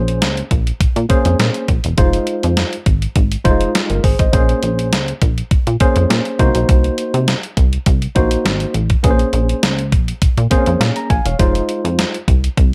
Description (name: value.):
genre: early-eighties boogie funk.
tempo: 102 BPM.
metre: 4/4.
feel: straight.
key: Bb minor.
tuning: A4 = 440 Hz.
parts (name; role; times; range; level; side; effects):
tine electric piano; accompaniment; 0.0-12.2 s; G3 to Bb5; -21 LUFS; equal; overdrive.
plucky analog bass; bass; 0.0-12.7 s; E1 to C3; -20 LUFS; equal; none.
detuned 8-bit digital drum machine; drums; 0.1-12.7 s; hi-hat, kick drum, snare drum; -18 LUFS; equal; none.
room: digital ambience.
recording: none.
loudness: -16 LUFS.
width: mono.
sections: 0.0-12.7 A section.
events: none.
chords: 0.0 Bbm9; 2.0 Fm7; 4.3 Bbm9; 6.4 Cm7b5; 9.0 Bbm9; 11.4 Fm7.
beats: 0.22 0.81 1.39 | 1.98 2.57 3.16 3.75 | 4.33 4.92 5.51 6.10 | 6.69 7.28 7.87 8.45 | 9.04 9.63 10.22 10.81 | 11.39 11.98 12.57.